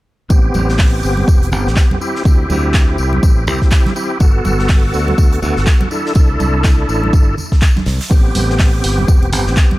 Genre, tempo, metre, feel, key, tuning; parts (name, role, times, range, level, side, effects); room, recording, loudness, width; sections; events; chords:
deep house; 123 BPM; 4/4; swing 59% on 16ths; A dorian; A4 = 440 Hz
bright tonewheel organ; stabs; 0.3-9.8 s; B3 to A4; -19 LUFS; equal; chorus vibrato, fast rotary speaker, sidechain pumping, low-pass filter, analog delay
modern bright fingered electric bass; bass; 0.3-9.6 s; E1 to D2; -17 LUFS; equal; sidechain pumping
electronic kick drum; drums; 0.3-9.7 s; -10 LUFS; equal
huge arena drum kit; drums; 0.3-9.7 s; hi-hat, snare drum, tambourine; -29 LUFS; equal; high-pass filter on hats, high-pass filter on snare, high-pass filter on perc, high-pass filter on room
congas; percussion; 0.6-9.8 s; -23 LUFS; right 2 dB; sidechain pumping on perc
punchy analog drum machine; drums; 0.8-9.7 s; handclaps, hi-hat; -22 LUFS; equal
studio reverb; -11 LUFS; side -18 dB against mid
0.3-9.8 A section
0.3 Am9; 2.0 D9sus4; 4.2 Gmaj9; 5.9 C69; 8.1 Am9